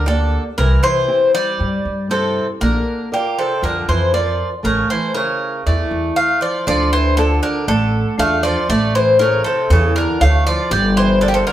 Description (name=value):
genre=greek folk, Greek bouzouki band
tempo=118 BPM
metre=4/4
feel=straight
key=D minor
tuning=A4 = 439 Hz
part: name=Greek bouzouki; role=melody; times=0.0-11.5 s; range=G4 to F5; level=-18 LUFS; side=left 1 dB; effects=none
part: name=Greek bouzouki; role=second line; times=0.0-11.5 s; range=C3 to Bb3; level=-22 LUFS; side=right 2 dB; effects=none
part: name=nylon-string guitar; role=accompaniment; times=0.0-11.5 s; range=C3 to D5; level=-22 LUFS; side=right 1 dB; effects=none
part: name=upright bass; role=bass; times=0.0-11.4 s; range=G1 to G2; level=-18 LUFS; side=equal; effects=none
room=moderate large studio reverb, RT60 0.8 s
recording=band playing live in one room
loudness=-14 LUFS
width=side -12 dB against mid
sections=0.0-6.7 A section; 6.7-11.5 B section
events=none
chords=0.0 Gm; 0.6 C; 2.6 Bb; 4.6 A; 6.7 Dm; 8.7 A; 10.7 Gm